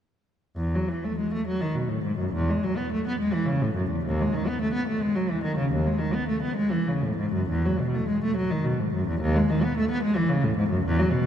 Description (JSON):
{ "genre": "classical, baroque-style suite movement for unaccompanied cello", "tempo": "70 BPM (dotted quarters)", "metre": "12/8", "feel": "uneven beats, rubato", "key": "E major", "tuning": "A4 = 442 Hz", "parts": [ { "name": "rich cello", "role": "solo", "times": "0.6-11.3 s", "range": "D#2 to B3", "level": "-23 LUFS", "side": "equal", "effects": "none" } ], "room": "wet cathedral reverb, RT60 5.4 s", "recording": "minimal, uncompressed stereo recording", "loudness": "-23 LUFS", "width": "side -9 dB against mid", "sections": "0.6-11.3 A section", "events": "none", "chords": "none" }